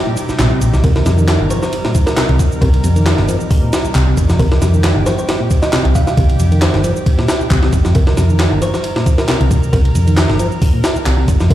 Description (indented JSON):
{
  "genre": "breakbeat, breaks",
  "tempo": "135 BPM",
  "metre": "4/4",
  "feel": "swing 54% on 16ths",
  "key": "C minor pentatonic",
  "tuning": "A4 = 436 Hz",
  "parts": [
    { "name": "lush unison pad", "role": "sustained chords", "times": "0.0-11.5 s", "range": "C3 to Eb5", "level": "-23 LUFS", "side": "right 1 dB", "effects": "chorus, sidechain pumping" },
    { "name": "tonewheel organ", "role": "riff", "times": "0.1-11.5 s", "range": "Bb2 to F3", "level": "-20 LUFS", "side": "equal", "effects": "slow rotary speaker, vintage 12-bit sampler grit, tape echo" },
    { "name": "breakbeat sampler-style drum kit", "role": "drums", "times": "0.2-11.5 s", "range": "hi-hat, kick drum, ride cymbal, snare drum", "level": "-16 LUFS", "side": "equal", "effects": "small room ambience" },
    { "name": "electronic shaker and handclaps", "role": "drums", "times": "0.2-11.5 s", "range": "none", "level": "-25 LUFS", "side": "equal", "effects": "small room ambience" },
    { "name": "hollow-body short-scale picked electric bass", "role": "bass", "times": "0.3-11.5 s", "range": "G1 to F2", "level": "-13 LUFS", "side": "equal", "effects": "none" },
    { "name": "kalimba", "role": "melody", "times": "0.8-11.5 s", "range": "Bb4 to F5", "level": "-24 LUFS", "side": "right 1 dB", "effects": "small speaker sound, vintage 12-bit sampler grit, tape echo" }
  ],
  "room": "little or no reverb",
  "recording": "played on a big sound system in a bare room, large studio reverb, lossy compression artefacts",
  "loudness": "-11 LUFS",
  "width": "side -13 dB against mid",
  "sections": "0.0-11.5 A section",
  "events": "break 0.0-0.8",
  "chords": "0.0 Cm7"
}